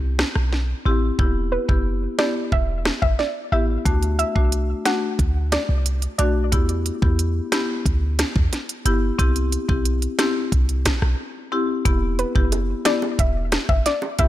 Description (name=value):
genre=dancehall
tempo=90 BPM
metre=4/4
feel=straight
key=E minor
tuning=A4 = 440 Hz
part: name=clean 808-style bass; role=bass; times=0.0-14.3 s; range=E1 to E2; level=-21 LUFS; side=equal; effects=none
part: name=afro-pop drum kit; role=drums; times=0.2-14.3 s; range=hi-hat, kick drum, rim click, snare drum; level=-22 LUFS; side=equal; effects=none
part: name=marimba with medium mallets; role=accompaniment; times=0.9-14.3 s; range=A3 to G4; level=-26 LUFS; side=left 3 dB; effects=sidechain pumping
part: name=soft round pluck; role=melody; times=1.5-6.3, 12.2-14.3 s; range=B4 to F#5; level=-26 LUFS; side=equal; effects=chorus, ping-pong delay
part: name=bongos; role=percussion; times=12.5-14.3 s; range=none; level=-31 LUFS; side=right 5 dB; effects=none
room=little or no reverb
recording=none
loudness=-19 LUFS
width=side -14 dB against mid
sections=0.0-1.2 A section; 1.2-11.9 B section; 11.9-14.3 C section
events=break 11.2-11.9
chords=0.0 C; 1.2 Em; 3.9 D; 6.5 Em; 9.2 C; 11.9 Em